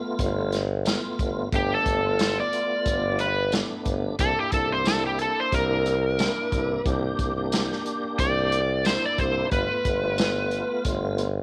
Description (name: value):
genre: straight-eighth soul blues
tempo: 90 BPM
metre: 4/4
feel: swing 56% on 16ths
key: G mixolydian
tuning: A4 = 440 Hz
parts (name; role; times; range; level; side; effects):
- tonewheel organ; accompaniment; 0.0-11.3 s; A3 to G4; -34 LUFS; equal; chorus vibrato, slow rotary speaker
- clear tuba; bass; 0.2-11.4 s; G1 to C2; -30 LUFS; equal; none
- crunchy breakbeat drum kit; drums; 0.2-11.4 s; hi-hat, kick drum, snare drum, tambourine; -31 LUFS; equal; none
- overdriven slide guitar; melody; 1.6-10.8 s; G4 to D5; -27 LUFS; equal; none
room: light reverb, small room ambience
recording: none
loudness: -25 LUFS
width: mono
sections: 0.0-11.4 A section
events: electric slide guitar solo 0.0-11.4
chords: 0.0 G9; 4.2 C9; 9.5 G9